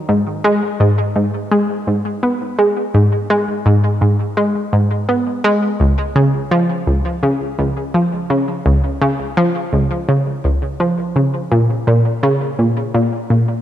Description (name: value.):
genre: ambient.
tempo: 84 BPM.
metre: 4/4.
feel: straight.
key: unclear.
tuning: A4 = 440 Hz.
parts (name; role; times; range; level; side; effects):
analog pluck; solo; 0.1-13.4 s; Db2 to Cb4; -14 LUFS; equal; chorus, cassette tape, tape echo.
room: moderate plate reverb, RT60 2.5 s.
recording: cassette tape.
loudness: -14 LUFS.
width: side -11 dB against mid.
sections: 0.0-13.6 A section.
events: none.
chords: none.